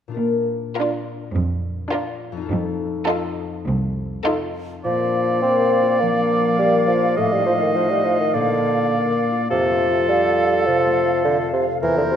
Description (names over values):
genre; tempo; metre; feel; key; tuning
cinematic, playful, whimsical film cue; 103 BPM; 4/4; straight; Bb major; A4 = 439 Hz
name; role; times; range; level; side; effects
concert harp; arpeggios; 0.1-12.2 s; E2 to Eb5; -25 LUFS; left 6 dB; none
rich studio cello section; bass; 0.2-4.1 s; C2 to Bb2; -24 LUFS; right 2 dB; none
clear chamber violin section; melody; 0.8-4.7 s; A4 to Bb4; -29 LUFS; left 1 dB; none
rich chamber violin section; second line; 0.8-4.7 s; F4; -29 LUFS; left 3 dB; none
rich chamber viola section; accompaniment; 0.8-4.7 s; D4 to Eb4; -26 LUFS; right 3 dB; none
clear oboe; second line; 4.8-12.2 s; A4 to Eb5; -25 LUFS; right 1 dB; none
flute section; second line; 4.8-12.2 s; C5 to F5; -24 LUFS; right 1 dB; none
mellow clarinet; second line; 4.8-12.2 s; A3 to F4; -26 LUFS; left 1 dB; none
mellow bassoon; accompaniment; 4.8-12.2 s; C3 to C4; -19 LUFS; right 1 dB; none
room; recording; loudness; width
wet scoring stage reverb, RT60 2.0 s; none; -17 LUFS; side -8 dB against mid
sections
0.2-4.8 A section; 4.8-12.2 B section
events
none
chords
0.2 Bb; 2.5 F7; 4.8 Bb; 7.2 F7/A; 8.3 Bb; 9.5 F